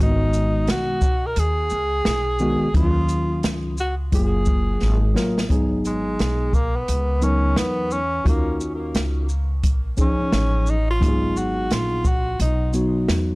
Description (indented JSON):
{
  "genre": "hip hop, jazz-hop",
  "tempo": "87 BPM",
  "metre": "4/4",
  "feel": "swing 62% on 16ths",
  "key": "G# dorian",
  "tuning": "A4 = 440 Hz",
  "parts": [
    { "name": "breathy tenor saxophone", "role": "melody", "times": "0.0-12.7 s", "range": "G#3 to A#4", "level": "-25 LUFS", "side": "equal", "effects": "tape echo" },
    { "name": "tine electric piano", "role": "accompaniment", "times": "0.0-13.3 s", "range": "D#3 to A#4", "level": "-24 LUFS", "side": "left 1 dB", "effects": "none" },
    { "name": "upright bass", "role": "bass", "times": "0.0-13.3 s", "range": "F#1 to E2", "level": "-23 LUFS", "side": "equal", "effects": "none" },
    { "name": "open jazz drum kit", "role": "drums", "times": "0.3-13.3 s", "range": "hi-hat, kick drum, shaker, snare drum", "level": "-22 LUFS", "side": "equal", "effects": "none" }
  ],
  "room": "small room ambience",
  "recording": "dry, gritty hardware recording, transformer saturation",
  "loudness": "-18 LUFS",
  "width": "side -23 dB against mid",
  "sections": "0.0-5.5 A section; 5.5-13.3 B section",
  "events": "drum fill 4.8-5.5; tenor saxophone solo 5.5-13.3",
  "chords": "0.0 G#m7; 2.7 D#m9; 4.1 F#maj9; 5.5 G#m7; 8.3 D#m9; 11.0 G#m7",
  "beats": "0.68 1.37 2.06 | 2.75 3.44 4.12 4.81 | 5.50 6.19 6.88 7.57 | 8.26 8.95 9.64 10.33 | 11.02 11.71 12.40 13.09"
}